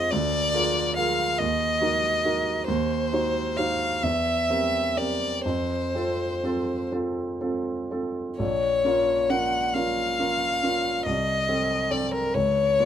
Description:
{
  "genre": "classical, romantic duo for violin and grand piano",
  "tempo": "39-48 BPM (dotted quarters)",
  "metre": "6/8",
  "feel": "rubato",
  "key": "Bb minor",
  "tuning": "A4 = 444 Hz",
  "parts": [
    { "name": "rich violin", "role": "melody", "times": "0.0-12.9 s", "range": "Bb4 to Gb5", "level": "-24 LUFS", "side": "left 2 dB", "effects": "none" },
    { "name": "warm grand piano", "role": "accompaniment", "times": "0.0-12.9 s", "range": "Bb1 to C5", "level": "-26 LUFS", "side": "right 2 dB", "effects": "none" }
  ],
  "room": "light reverb",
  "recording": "none",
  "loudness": "-22 LUFS",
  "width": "side -9 dB against mid",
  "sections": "0.0-8.4 A section; 8.4-12.9 A section",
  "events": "none",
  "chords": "0.1 Bb7/D; 1.4 Ebm; 2.7 Cdim/Eb; 4.0 C7/E; 5.5 F; 8.4 Bbm; 11.1 Adim/C; 12.3 N.C."
}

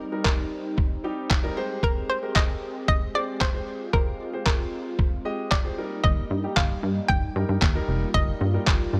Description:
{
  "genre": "dance-pop",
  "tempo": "114 BPM",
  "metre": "4/4",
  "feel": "straight",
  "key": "Eb major",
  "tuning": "A4 = 440 Hz",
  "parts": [
    { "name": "hollow square pluck", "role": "melody", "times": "0.0-9.0 s", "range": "Bb4 to G5", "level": "-31 LUFS", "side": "equal", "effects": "chorus, digital delay" },
    { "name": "warm baby grand piano", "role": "accompaniment", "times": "0.0-9.0 s", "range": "G3 to Eb5", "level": "-36 LUFS", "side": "equal", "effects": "sidechain pumping" },
    { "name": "warm analog pad", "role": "sustained chords", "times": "0.0-9.0 s", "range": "G3 to G4", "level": "-37 LUFS", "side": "equal", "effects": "lush chorus, sidechain pumping" },
    { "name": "trip hop sampler-style drum kit", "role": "drums", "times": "0.3-8.8 s", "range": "handclaps, kick drum", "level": "-25 LUFS", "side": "equal", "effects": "none" },
    { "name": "plucky analog bass", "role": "bass", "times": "6.0-9.0 s", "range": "F1 to G2", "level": "-28 LUFS", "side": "equal", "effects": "sidechain pumping" }
  ],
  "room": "little or no reverb",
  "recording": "none",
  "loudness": "-25 LUFS",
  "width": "mono",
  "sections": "0.0-9.0 A section",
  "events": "none",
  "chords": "0.0 Eb; 1.6 Abmaj7; 5.8 Eb"
}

